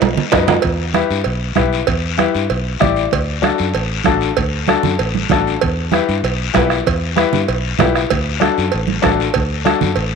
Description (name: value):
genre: latin, cumbia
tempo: 193 BPM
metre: 4/4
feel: straight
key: E minor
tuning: A4 = 441 Hz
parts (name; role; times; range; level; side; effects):
- fingered electric bass; bass; 0.0-10.2 s; A1 to G2; -21 LUFS; equal; none
- congas; percussion; 0.0-10.0 s; none; -21 LUFS; right 10 dB; none
- cowbell and timbales; percussion; 0.0-10.1 s; none; -21 LUFS; right 9 dB; none
- guiro; percussion; 0.0-10.2 s; none; -25 LUFS; left 11 dB; none
- warm upright piano; accompaniment; 0.3-9.9 s; D4 to D5; -19 LUFS; left 11 dB; none
- bombo; percussion; 0.3-9.8 s; none; -22 LUFS; right 6 dB; none
room: moderate echo chamber reverb, RT60 1.8 s, small room ambience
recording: 1960s-style stereo with parts hard left and right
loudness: -14 LUFS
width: side -5 dB against mid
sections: 0.6-10.2 A section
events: drum fill 0.0-0.6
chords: 0.0 B; 0.6 Em; 3.1 D; 5.6 Em; 8.1 D